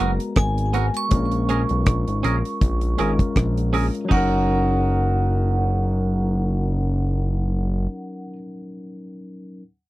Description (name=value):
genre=lovers rock reggae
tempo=80 BPM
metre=4/4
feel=swing 55% on 16ths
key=F# major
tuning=A4 = 440 Hz
part: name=overdriven tine electric piano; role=accompaniment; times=0.0-9.6 s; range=F#3 to A#4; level=-27 LUFS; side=left 2 dB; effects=none
part: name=twangy electric guitar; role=stabs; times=0.0-8.4 s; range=B3 to A#4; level=-26 LUFS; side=right 5 dB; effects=none
part: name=fat analog bass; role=bass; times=0.0-7.9 s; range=F#1 to B1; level=-21 LUFS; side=equal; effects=none
part: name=deep reggae drum kit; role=drums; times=0.2-4.3 s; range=crash cymbal, hi-hat, kick drum, rim click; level=-21 LUFS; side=equal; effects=none
part: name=vibraphone with hard mallets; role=melody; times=0.4-8.3 s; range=F#5 to C#6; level=-29 LUFS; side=right 1 dB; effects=tape echo
room=little or no reverb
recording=dry, close 1970s-style studio recording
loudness=-19 LUFS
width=side -17 dB against mid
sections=0.0-4.1 A section; 4.1-7.1 B section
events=none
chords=0.0 G#m9; 1.1 A#m7; 4.1 F#6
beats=0.36 | 1.11 1.86 2.61 3.36 | 4.11 4.86 5.61 6.36